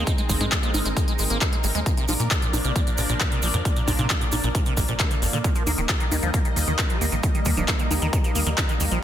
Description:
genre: uplifting trance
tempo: 134 BPM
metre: 4/4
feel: straight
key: Eb major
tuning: A4 = 440 Hz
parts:
  - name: lush unison pad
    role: sustained chords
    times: 0.0-9.0 s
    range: F3 to Eb5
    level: -30 LUFS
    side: equal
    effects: chorus, phaser, sidechain pumping
  - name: liquid acid bass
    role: arpeggios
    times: 0.0-9.0 s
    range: F2 to Eb4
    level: -28 LUFS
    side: right 1 dB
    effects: phaser, sidechain pumping, digital delay
  - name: tight sequencer bass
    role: bass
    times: 0.0-9.0 s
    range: Eb1 to Bb2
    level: -26 LUFS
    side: equal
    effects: sidechain pumping
  - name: big-room dance drum kit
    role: drums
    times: 0.1-9.0 s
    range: congas, handclaps, hi-hat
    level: -27 LUFS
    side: left 1 dB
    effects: none
  - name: electronic kick drum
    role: drums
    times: 0.1-8.7 s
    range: none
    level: -24 LUFS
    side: equal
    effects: none
  - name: cabasa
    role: percussion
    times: 0.1-9.0 s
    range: none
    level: -34 LUFS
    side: right 4 dB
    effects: none
room: light reverb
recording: dense, heavily limited modern master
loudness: -20 LUFS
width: side -11 dB against mid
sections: 0.0-9.0 A section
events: none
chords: 0.0 Ab; 1.9 Bb; 5.4 Eb

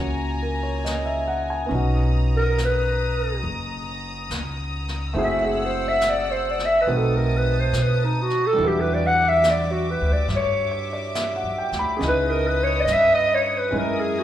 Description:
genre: jazz ballad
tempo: 70 BPM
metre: 4/4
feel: swing 67% on 8ths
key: B major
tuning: A4 = 440 Hz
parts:
  - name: growling clarinet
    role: melody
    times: 0.0-14.2 s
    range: D#4 to F#5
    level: -21 LUFS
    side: equal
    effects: slapback echo
  - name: warm grand piano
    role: accompaniment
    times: 0.0-14.2 s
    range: A#2 to B5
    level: -28 LUFS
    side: right 1 dB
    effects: slapback echo
  - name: warm studio string section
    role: sustained chords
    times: 0.0-14.2 s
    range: E4 to E6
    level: -31 LUFS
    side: left 2 dB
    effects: none
  - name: upright bass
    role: bass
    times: 0.0-14.2 s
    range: F#1 to B2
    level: -25 LUFS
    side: equal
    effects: none
  - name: jazz brush drum kit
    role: drums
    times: 0.9-14.2 s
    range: brushed snare drum, hi-hat, snare drum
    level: -34 LUFS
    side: left 1 dB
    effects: slapback echo
room: light reverb, small room ambience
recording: live gig heard through the venue's PA, club reverb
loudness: -19 LUFS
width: side -11 dB against mid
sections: 0.0-14.2 A section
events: clarinet solo 0.0-14.2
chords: 0.0 F#9; 1.7 Bmaj7; 5.2 F#m7b5; 6.9 B7b9; 8.6 Em9; 12.0 C#m9; 13.7 F#13

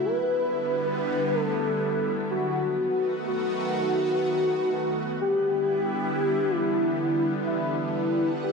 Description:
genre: synthwave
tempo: 93 BPM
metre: 4/4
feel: straight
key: unclear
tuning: A4 = 442 Hz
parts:
  - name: warm velvety synth lead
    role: melody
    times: 0.0-8.5 s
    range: E4 to B4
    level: -25 LUFS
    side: left 1 dB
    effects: chorus, shimmer reverb, tape echo
  - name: lush unison pad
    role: sustained chords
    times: 0.0-8.5 s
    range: D3 to F#5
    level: -28 LUFS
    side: equal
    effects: chorus, phaser, shimmer reverb
room: wet lush hall reverb, RT60 2.4 s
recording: none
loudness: -23 LUFS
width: side -4 dB against mid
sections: 0.0-5.2 A section; 5.2-8.5 B section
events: none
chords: 0.0 G6; 2.6 B7; 5.2 Em7; 7.8 Gmaj7

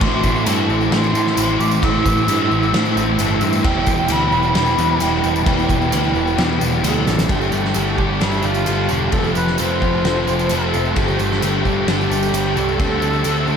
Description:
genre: rock, shoegaze and dream pop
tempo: 131 BPM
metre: 4/4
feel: straight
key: unclear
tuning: A4 = 437 Hz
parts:
  - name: mellow jazz flute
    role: melody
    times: 0.0-13.6 s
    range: E4 to E6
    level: -23 LUFS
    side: equal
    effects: diffuse ambient delay
  - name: warbly tape-like pad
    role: sustained chords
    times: 0.0-13.6 s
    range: G3 to C6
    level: -26 LUFS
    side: right 3 dB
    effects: chorus, built-in reverb
  - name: direct-recorded clean electric guitar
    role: arpeggios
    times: 0.0-13.6 s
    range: E3 to G4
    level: -30 LUFS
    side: left 6 dB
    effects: none
  - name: raw garage guitar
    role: riff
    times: 0.0-13.6 s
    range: E2 to A4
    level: -23 LUFS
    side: right 8 dB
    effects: overdrive, reverse reverb
  - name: thick fuzz guitar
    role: riff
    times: 0.0-13.6 s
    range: E2 to D4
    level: -22 LUFS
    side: left 6 dB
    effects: distortion, analog chorus
  - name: growling picked electric bass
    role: bass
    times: 0.0-13.6 s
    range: E1 to A2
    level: -22 LUFS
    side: equal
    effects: overdrive
  - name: loose indie drum kit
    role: drums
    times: 0.0-13.4 s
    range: crash cymbal, kick drum, snare drum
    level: -23 LUFS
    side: equal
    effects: none
  - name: tambourine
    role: percussion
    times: 0.2-13.5 s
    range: none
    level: -34 LUFS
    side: right 10 dB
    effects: none
room: wet huge ambient reverb, RT60 7.7 s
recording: dreamy mix soaked in reverb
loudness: -15 LUFS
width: side -7 dB against mid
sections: 0.0-7.3 A section; 7.3-13.6 B section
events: drum fill 7.1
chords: 0.0 Am; 3.6 Em; 7.3 Gsus2; 9.1 F; 11.0 Gsus2; 12.8 D7sus4

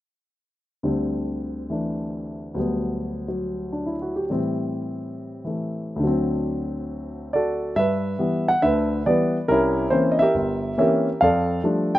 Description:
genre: solo jazz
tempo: 139 BPM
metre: 4/4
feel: swing 67% on 8ths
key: G major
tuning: A4 = 440 Hz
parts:
  - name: warm concert grand piano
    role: solo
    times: 0.8-12.0 s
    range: G1 to G5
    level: -21 LUFS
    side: equal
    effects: none
room: light reverb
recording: rough home demo mix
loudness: -21 LUFS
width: side -15 dB against mid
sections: 0.8-7.8 A section; 7.8-12.0 B section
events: none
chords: 0.8 D7sus4; 2.6 Gmaj7/D; 4.3 Am7; 6.0 D7; 7.8 G6; 9.5 C7b9; 11.2 F69

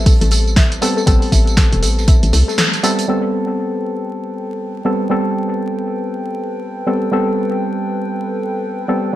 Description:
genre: deep house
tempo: 119 BPM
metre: 4/4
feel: swing 60% on 16ths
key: A minor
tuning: A4 = 440 Hz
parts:
  - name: percussive organ stab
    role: stabs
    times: 0.0-9.2 s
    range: G3 to A4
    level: -19 LUFS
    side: equal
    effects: chorus, sidechain pumping, tape echo
  - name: hollow knocking FM bass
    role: bass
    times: 0.0-2.4 s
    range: E1 to C2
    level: -16 LUFS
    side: equal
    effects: tube saturation
  - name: warbly dusty pluck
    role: arpeggios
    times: 0.1-2.9 s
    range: A4 to E5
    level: -26 LUFS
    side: left 5 dB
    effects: chorus, cassette tape, sidechain pumping, tape echo
  - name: electronic kick drum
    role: drums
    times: 0.1-2.2 s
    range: none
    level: -12 LUFS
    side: equal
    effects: none
  - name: punchy analog drum machine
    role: drums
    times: 0.1-3.1 s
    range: hi-hat, snare drum, tambourine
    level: -19 LUFS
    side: right 1 dB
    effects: low-pass filter on hats, low-pass filter on perc, low-pass filter on snare, low-pass filter on room
  - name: vintage drum kit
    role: drums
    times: 0.1-3.1 s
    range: hi-hat, snare drum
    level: -32 LUFS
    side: right 5 dB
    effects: none
  - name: hollow soft pad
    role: sustained chords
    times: 3.1-9.2 s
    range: A4 to G5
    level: -28 LUFS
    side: right 1 dB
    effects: chorus, vintage 12-bit sampler grit, sidechain pumping
room: light reverb, digital ambience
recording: vinyl crackle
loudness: -14 LUFS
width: side -14 dB against mid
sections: 0.0-3.1 A section; 3.1-9.2 B section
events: break 2.6-3.1; band accent 2.6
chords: 0.0 Am9

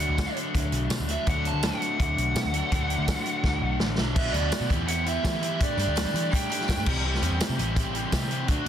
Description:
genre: indie rock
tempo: 166 BPM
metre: 4/4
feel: straight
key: unclear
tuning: A4 = 441 Hz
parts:
  - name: fuzz lead guitar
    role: melody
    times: 0.0-6.8 s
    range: D5 to A5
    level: -30 LUFS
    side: right 1 dB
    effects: distortion, analog delay
  - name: crunchy overdriven guitar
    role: riff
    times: 0.0-8.7 s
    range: B2 to G4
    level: -33 LUFS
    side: right 8 dB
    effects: analog chorus
  - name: raw garage guitar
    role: riff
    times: 0.0-8.7 s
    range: B2 to G4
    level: -33 LUFS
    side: left 10 dB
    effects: overdrive
  - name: vintage muted picked electric bass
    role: bass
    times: 0.0-8.7 s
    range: A1 to G3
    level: -29 LUFS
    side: equal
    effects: none
  - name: vintage drum kit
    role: drums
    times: 0.0-8.7 s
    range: crash cymbal, hi-hat, kick drum, snare drum, tambourine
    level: -28 LUFS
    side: equal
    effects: soft clipping on snare
  - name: tambourine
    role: percussion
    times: 4.5-8.5 s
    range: none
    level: -46 LUFS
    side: right 15 dB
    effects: none
room: studio reverb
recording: dense, heavily limited modern master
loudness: -24 LUFS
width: side -9 dB against mid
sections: 0.0-4.2 A section; 4.2-8.7 B section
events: drum fill 3.4-4.2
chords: 0.0 D6; 4.2 Bm; 4.7 Em; 5.6 Gsus2; 6.9 C

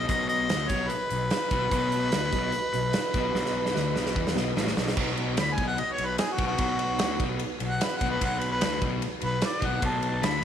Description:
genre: blues rock power trio and southern rock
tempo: 148 BPM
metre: 4/4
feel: straight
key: B major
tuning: A4 = 441 Hz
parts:
  - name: warm harmonica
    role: melody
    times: 0.0-10.4 s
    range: F#4 to B5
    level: -29 LUFS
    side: left 1 dB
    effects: overdrive
  - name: tonewheel organ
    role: sustained chords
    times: 0.0-10.4 s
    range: B3 to D#5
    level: -37 LUFS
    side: right 9 dB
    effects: slow rotary speaker, overdrive, chorus vibrato
  - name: fuzz guitar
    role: riff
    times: 0.0-10.4 s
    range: A2 to E3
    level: -33 LUFS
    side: left 8 dB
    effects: distortion
  - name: fuzz fingered electric bass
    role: bass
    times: 0.0-10.4 s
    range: A1 to E2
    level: -32 LUFS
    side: right 1 dB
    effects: overdrive
  - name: big rock drum kit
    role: drums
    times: 0.1-10.3 s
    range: crash cymbal, hi-hat, kick drum, ride cymbal, snare drum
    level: -29 LUFS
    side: right 1 dB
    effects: none
room: moderate spring reverb, RT60 1.3 s, small room reverb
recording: 1960s-style stereo with parts hard left and right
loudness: -24 LUFS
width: side -9 dB against mid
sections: 0.0-5.0 A section; 5.0-10.4 B section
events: drum fill 3.3-5.0; harmonica solo 5.0-10.4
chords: 0.0 B

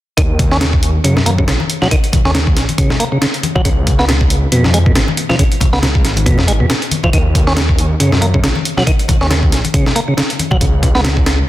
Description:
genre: breakbeat, breaks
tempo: 138 BPM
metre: 4/4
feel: swing 57% on 16ths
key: Eb minor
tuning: A4 = 439 Hz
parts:
  - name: tonewheel organ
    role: riff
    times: 0.2-11.1 s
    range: Cb3 to Db4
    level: -17 LUFS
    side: equal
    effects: overdrive, low-pass filter, dub echo
  - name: detuned saw bass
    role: bass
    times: 0.2-11.4 s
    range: Ab1 to Gb2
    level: -15 LUFS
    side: equal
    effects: none
  - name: breakbeat sampler-style drum kit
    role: drums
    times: 0.2-11.4 s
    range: hi-hat, kick drum, snare drum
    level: -14 LUFS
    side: equal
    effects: small room reverb
  - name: congas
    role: percussion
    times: 0.4-10.9 s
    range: none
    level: -22 LUFS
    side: left 4 dB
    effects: none
room: light reverb, digital ambience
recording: dense, heavily limited modern master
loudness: -11 LUFS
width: side -15 dB against mid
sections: 0.2-11.5 A section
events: none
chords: 0.2 Ebm7; 3.7 Db; 7.1 Ebm7; 10.6 N.C.

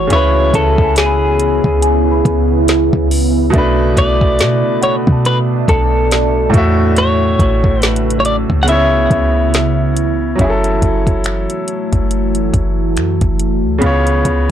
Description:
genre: contemporary R&B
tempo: 70 BPM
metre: 4/4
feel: swing 58% on 16ths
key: F# minor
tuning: A4 = 441 Hz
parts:
  - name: clean electric guitar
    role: melody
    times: 0.0-9.9 s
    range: G#4 to F#5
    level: -16 LUFS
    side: left 2 dB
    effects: digital delay
  - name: clear grand piano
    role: accompaniment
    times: 0.0-14.5 s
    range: A2 to E5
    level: -18 LUFS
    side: equal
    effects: none
  - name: deep dark ambient pad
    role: sustained chords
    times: 0.0-14.5 s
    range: B2 to F#4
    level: -19 LUFS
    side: right 2 dB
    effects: chorus, built-in reverb, sidechain pumping
  - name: clean 808-style bass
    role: bass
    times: 0.0-14.5 s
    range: F#1 to B2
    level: -16 LUFS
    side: equal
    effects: tube saturation
  - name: smooth R&B drum kit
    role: drums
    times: 0.1-14.5 s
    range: finger snaps, hi-hat, kick drum, snare drum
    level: -16 LUFS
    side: equal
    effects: soft clipping on snare
  - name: small celesta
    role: texture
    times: 0.5-9.1 s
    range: E5 to C#6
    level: -25 LUFS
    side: equal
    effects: digital delay
room: little or no reverb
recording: blown-out, overdriven recording, overdrive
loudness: -11 LUFS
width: side -10 dB against mid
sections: 0.0-10.4 A section; 10.4-14.5 B section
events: none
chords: 0.1 C#m7; 3.5 Bm7; 6.5 A6; 8.7 C#m7; 10.4 F#m7; 13.8 C#7

